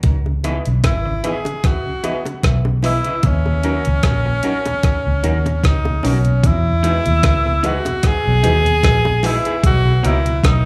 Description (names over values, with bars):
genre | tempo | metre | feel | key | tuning
lovers rock reggae | 75 BPM | 4/4 | swing 55% on 16ths | unclear | A4 = 445 Hz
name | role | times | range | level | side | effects
vintage muted fingered electric bass | bass | 0.0-10.7 s | G#1 to E2 | -20 LUFS | equal | none
crisp 8-bit digital drum machine | drums | 0.0-10.6 s | hi-hat, kick drum, rim click | -19 LUFS | equal | overdrive
tonewheel organ | accompaniment | 0.3-10.3 s | D#2 to D#4 | -30 LUFS | equal | none
bongos | percussion | 0.3-10.6 s | none | -31 LUFS | equal | slapback echo
mellow FM electric piano | accompaniment | 0.4-10.2 s | C#4 to D#5 | -33 LUFS | equal | none
electric guitar through a small old amp | stabs | 0.4-10.2 s | C#4 to D#5 | -30 LUFS | equal | spring reverb, tape echo, slapback echo
warm tenor saxophone | melody | 0.9-10.7 s | C#4 to G#4 | -22 LUFS | equal | tape echo, slapback echo
room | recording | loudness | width
light reverb | live gig heard through the venue's PA, club reverb | -17 LUFS | mono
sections
0.0-6.4 A section; 6.4-10.7 B section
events
none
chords
0.0 C#m9; 3.2 D#m7; 6.4 Emaj7; 9.6 Bmaj7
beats
| 0.04 0.84 1.64 2.44 | 3.24 4.04 4.84 5.64 | 6.44 7.24 8.04 8.84 | 9.63 10.43